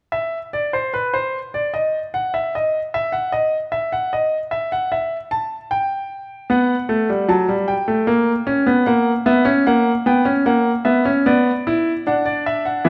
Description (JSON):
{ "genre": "classical, baroque-style 3-part fugue for grand piano", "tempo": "75 BPM", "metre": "4/4", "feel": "straight", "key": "unclear", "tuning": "A4 = 440 Hz", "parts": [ { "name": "clear concert grand piano", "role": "solo", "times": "0.1-12.9 s", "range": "E3 to A5", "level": "-19 LUFS", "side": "equal", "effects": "none" } ], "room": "wet recital hall reverb, RT60 1.5 s", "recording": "none", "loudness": "-19 LUFS", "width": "mono", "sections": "0.1-12.8 A section", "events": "none", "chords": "0.1 N.C.; 6.5 B5; 8.1 A#dim7; 11.2 Bm" }